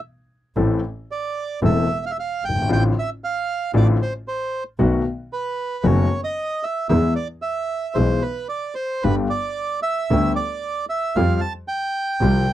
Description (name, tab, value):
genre	tango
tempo	113 BPM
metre	4/4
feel	rubato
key	A minor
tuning	A4 = 440 Hz
part	warm concert grand piano	accompaniment	0.6-12.4 s	E1 to A4	-20 LUFS	left 3 dB	none
part	rich double bass	bass	0.6-12.4 s	E1 to F2	-21 LUFS	right 1 dB	none
part	bandoneon	melody	1.1-12.5 s	B4 to A5	-24 LUFS	right 3 dB	none
room	light reverb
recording	dry, close 1970s-style studio recording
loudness	-20 LUFS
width	side -13 dB against mid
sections	0.0-12.5 A section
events	none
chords	0.0 N.C.; 0.6 Am; 2.7 Dm7/A; 4.8 B7; 6.9 E; 9.0 G; 11.2 Fsus2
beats	0.03 | 0.56 1.09 1.63 2.16 | 2.69 3.21 3.74 4.26 | 4.79 5.31 5.84 6.37 | 6.90 7.43 7.96 8.50 | 9.04 9.58 10.11 10.64 | 11.16 11.69 12.22